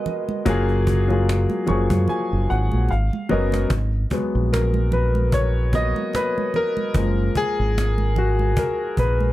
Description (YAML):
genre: R&B, neo-soul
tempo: 74 BPM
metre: 4/4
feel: swing 55% on 16ths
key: G# dorian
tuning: A4 = 440 Hz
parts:
  - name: warm upright piano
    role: accompaniment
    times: 0.0-9.3 s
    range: E#3 to C#6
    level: -22 LUFS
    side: left 2 dB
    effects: plate reverb
  - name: cajon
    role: drums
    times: 0.1-9.2 s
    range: none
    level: -26 LUFS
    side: equal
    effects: none
  - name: congas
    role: percussion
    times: 0.1-9.3 s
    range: none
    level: -30 LUFS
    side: right 6 dB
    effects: none
  - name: deep dub fingered electric bass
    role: bass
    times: 0.5-9.3 s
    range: F#1 to F#2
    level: -20 LUFS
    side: equal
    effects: none
room: little or no reverb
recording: none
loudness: -18 LUFS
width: side -15 dB against mid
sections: 0.0-3.7 A section; 3.7-9.3 B section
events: upright piano fill 1.3-3.7; drum fill 2.1-3.7; upright piano solo 3.7-9.3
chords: 0.5 F#maj9; 2.9 G#m11; 3.7 G#m9; 6.9 F#maj9